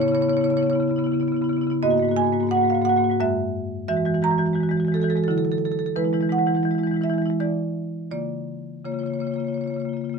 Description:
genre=classical, contemporary piece for solo marimba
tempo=86 BPM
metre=3/4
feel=straight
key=unclear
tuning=A4 = 439 Hz
part: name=marimba with medium mallets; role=solo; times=0.0-10.2 s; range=F#2 to A#5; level=-20 LUFS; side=equal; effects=none
room=light reverb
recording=dark, warm production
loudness=-20 LUFS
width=side -5 dB against mid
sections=0.0-10.2 A section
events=none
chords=0.0 C#m7; 1.8 G#sus2; 3.2 F#sus2; 3.9 Eadd9; 5.3 Dadd9; 6.0 E9; 8.1 C#6

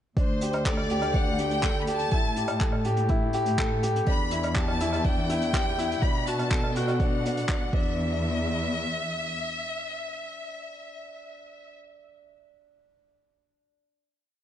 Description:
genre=piano and strings electronica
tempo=123 BPM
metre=4/4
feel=straight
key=unclear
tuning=A4 = 439 Hz
part: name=clear chamber violin section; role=melody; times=0.2-11.8 s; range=C5 to B5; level=-32 LUFS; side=left 1 dB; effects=none
part: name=warm upright piano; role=riff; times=0.2-14.4 s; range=D4 to D5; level=-30 LUFS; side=left 1 dB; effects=tape echo
part: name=dark symphonic cello section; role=bass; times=0.2-9.4 s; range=D2 to B2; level=-30 LUFS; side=equal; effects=sidechain pumping
part: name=electronic kick drum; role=drums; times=0.2-7.8 s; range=none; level=-26 LUFS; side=equal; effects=overdrive
part: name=vintage brush drum kit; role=drums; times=0.2-7.6 s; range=handclaps, hi-hat, woodblock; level=-34 LUFS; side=right 1 dB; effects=none
room=moderate echo chamber reverb, RT60 2.1 s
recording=dark, warm production, nothing above 10.6 kHz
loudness=-24 LUFS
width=side -10 dB against mid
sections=0.2-8.0 drop; 8.0-11.9 final hit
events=drop 0.2-8.0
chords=0.2 D7sus4; 2.1 A5; 4.1 Em7; 6.0 Bm7; 7.7 Dsus2/E

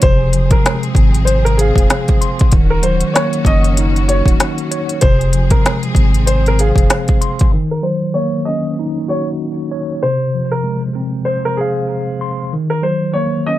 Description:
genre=hip hop, boom-bap hip-hop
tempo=96 BPM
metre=4/4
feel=swing 59% on 16ths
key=Eb dorian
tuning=A4 = 441 Hz
part: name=warm upright piano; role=melody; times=0.0-13.6 s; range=Ab4 to Eb5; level=-20 LUFS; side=equal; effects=low-pass filter, tape echo
part: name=mellow tine electric piano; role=accompaniment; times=0.0-13.6 s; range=C3 to C6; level=-18 LUFS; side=left 1 dB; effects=medium stereo tremolo, cassette tape, low-pass filter
part: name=rich studio string section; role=sustained chords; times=0.0-7.5 s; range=Eb3 to Ab4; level=-26 LUFS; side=left 2 dB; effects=none
part: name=warm sub bass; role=bass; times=0.0-6.9 s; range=Eb1 to Ab1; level=-15 LUFS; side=equal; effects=none
part: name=organic electronic drum kit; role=drums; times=0.0-7.5 s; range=hi-hat, kick drum, snare drum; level=-13 LUFS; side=equal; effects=none
room=light reverb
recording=none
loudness=-12 LUFS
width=side -14 dB against mid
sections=0.0-7.5 A section; 7.5-13.6 B section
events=filter sweep 7.5-13.6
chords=0.0 Fm; 2.5 Ebm7; 5.0 Fm; 7.5 Ebm7; 10.0 Fm; 12.5 Ebm7

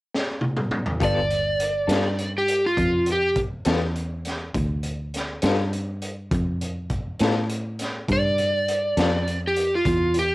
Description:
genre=slow blues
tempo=68 BPM (dotted quarters)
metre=12/8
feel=straight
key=G mixolydian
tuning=A4 = 442 Hz
part: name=raw garage drum kit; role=drums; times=0.1-10.3 s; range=hi-hat, kick drum, snare drum, toms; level=-27 LUFS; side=equal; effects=cassette tape
part: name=overdriven slide guitar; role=melody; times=1.0-10.3 s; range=F4 to D5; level=-22 LUFS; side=right 1 dB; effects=cassette tape
part: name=electric guitar through a small old amp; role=accompaniment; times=1.0-9.2 s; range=G3 to A4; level=-26 LUFS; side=left 5 dB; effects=tremolo, cassette tape
part: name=fingered electric bass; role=bass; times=1.0-10.3 s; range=G1 to A2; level=-26 LUFS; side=equal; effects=none
room=light reverb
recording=home recording on cassette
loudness=-21 LUFS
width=side -19 dB against mid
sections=0.0-1.0 A section; 1.0-10.3 B section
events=drum fill 0.1-1.0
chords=0.0 N.C.; 1.0 G7sus2

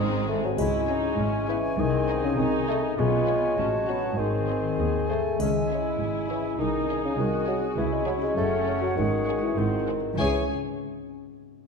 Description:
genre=cinematic, playful, whimsical film cue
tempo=100 BPM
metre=2/4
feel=straight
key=C# minor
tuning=A4 = 440 Hz
part: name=warm studio violin section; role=melody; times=0.0-10.5 s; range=B#3 to G#5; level=-40 LUFS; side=left 4 dB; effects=none
part: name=rich chamber violin section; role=second line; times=0.0-10.5 s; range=G#3 to E5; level=-39 LUFS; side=left 1 dB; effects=none
part: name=silver concert flute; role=second line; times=0.0-10.5 s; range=F#5 to D#6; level=-38 LUFS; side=left 1 dB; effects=none
part: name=dark bassoon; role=accompaniment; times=0.0-10.4 s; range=C#3 to B#3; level=-29 LUFS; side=right 1 dB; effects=none
part: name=warm symphonic viola section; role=accompaniment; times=0.0-10.5 s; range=D#3 to G#4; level=-35 LUFS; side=right 1 dB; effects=none
part: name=mellow French horn section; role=sustained chords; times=0.0-10.4 s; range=B#3 to G#4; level=-34 LUFS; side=left 4 dB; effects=none
part: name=concert harp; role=arpeggios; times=0.0-10.5 s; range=F#2 to G#5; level=-32 LUFS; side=left 7 dB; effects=none
part: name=rich chamber double bass section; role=bass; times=0.0-10.5 s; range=F#1 to D#2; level=-34 LUFS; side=right 4 dB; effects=none
part: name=warm studio cello section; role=bass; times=0.0-10.5 s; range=B#1 to B#2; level=-32 LUFS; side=right 3 dB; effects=none
part: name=folk marimba with soft mallets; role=melody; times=0.3-10.5 s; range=C#4 to E5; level=-32 LUFS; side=left 4 dB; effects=none
part: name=bright clarinet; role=second line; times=0.6-10.4 s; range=D#4 to B#4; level=-38 LUFS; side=left 2 dB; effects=none
part: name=warm oboe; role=second line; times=0.6-10.4 s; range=B#4 to E5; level=-39 LUFS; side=equal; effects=none
part: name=triangle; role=percussion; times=0.6-1.7, 5.4-6.6 s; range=none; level=-47 LUFS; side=left 2 dB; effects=none
room=wet scoring stage reverb, RT60 1.9 s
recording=dark, warm production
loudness=-23 LUFS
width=side -5 dB against mid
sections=0.6-10.2 A section; 10.2-11.4 B section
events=none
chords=0.0 G#; 0.6 C#m; 1.8 G#/B#; 3.0 C#7/B; 3.6 F#m/A; 4.2 G#; 5.4 C#m; 6.6 G#/B#; 7.8 C#m; 8.4 F#m; 9.0 G#7sus4; 9.6 G#7; 10.2 C#5

